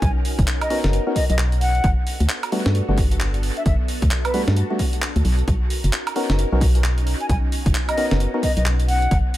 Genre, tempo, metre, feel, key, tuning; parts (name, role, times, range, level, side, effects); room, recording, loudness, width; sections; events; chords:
UK garage, two-step garage; 132 BPM; 4/4; swing 61% on 16ths; B major; A4 = 440 Hz
concert flute; melody; 0.0-4.4, 7.2-9.2 s; B4 to G#5; -26 LUFS; left 1 dB; dub echo
soft string machine; sustained chords; 0.0-9.4 s; B3 to A#4; -32 LUFS; equal; phaser, ensemble chorus, sidechain pumping
organ-like FM bass; bass; 0.0-9.2 s; F#1 to G2; -19 LUFS; equal
breakbeat sampler-style drum kit; drums; 0.0-9.4 s; handclaps, hi-hat, snare drum, woodblock; -27 LUFS; right 1 dB; dub echo
electronic kick drum; drums; 0.0-9.2 s; -21 LUFS; equal
percussive organ stab; stabs; 0.7-8.5 s; G3 to A#4; -26 LUFS; left 1 dB; chorus, analog delay
little or no reverb; echo-heavy mix; -18 LUFS; side -15 dB against mid
0.0-9.4 A section
0.0 Bmaj9; 1.8 Gmaj9; 5.5 Bmaj9